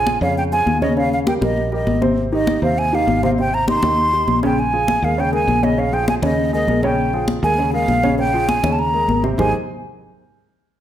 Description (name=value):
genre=Afro-Cuban jazz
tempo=200 BPM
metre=4/4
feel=straight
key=Ab major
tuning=A4 = 441 Hz
part: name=breathy mellow silver concert flute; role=melody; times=0.0-9.5 s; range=Eb5 to C6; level=-19 LUFS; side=right 1 dB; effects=none
part: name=dark upright piano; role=accompaniment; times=0.0-9.5 s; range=C3 to Db5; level=-21 LUFS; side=right 1 dB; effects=none
part: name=fingered electric bass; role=bass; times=0.0-9.5 s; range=Ab1 to F2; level=-23 LUFS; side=equal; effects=none
part: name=congas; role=percussion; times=0.1-9.5 s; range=none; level=-22 LUFS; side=left 3 dB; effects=none
room=wet large studio reverb, RT60 1.2 s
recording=none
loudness=-15 LUFS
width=side -11 dB against mid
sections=0.0-4.6 A section; 4.6-9.4 B section; 9.4-10.6 C section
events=none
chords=0.0 Bbm7; 1.0 Abmaj9; 4.6 Bb5; 5.2 Eb7sus4; 5.8 Bbm7; 6.4 Eb7sus4; 7.0 Bbm7; 7.6 Eb7sus4; 8.2 Bbm7; 8.8 Eb7sus4; 9.4 Abmaj9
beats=0.07 0.37 0.67 | 0.97 1.27 1.57 1.87 | 2.17 2.47 2.77 3.08 | 3.38 3.68 3.98 4.28 | 4.58 4.88 5.18 5.48 | 5.78 6.08 6.38 6.68 | 6.98 7.28 7.58 7.88 | 8.18 8.48 8.78 9.08 | 9.38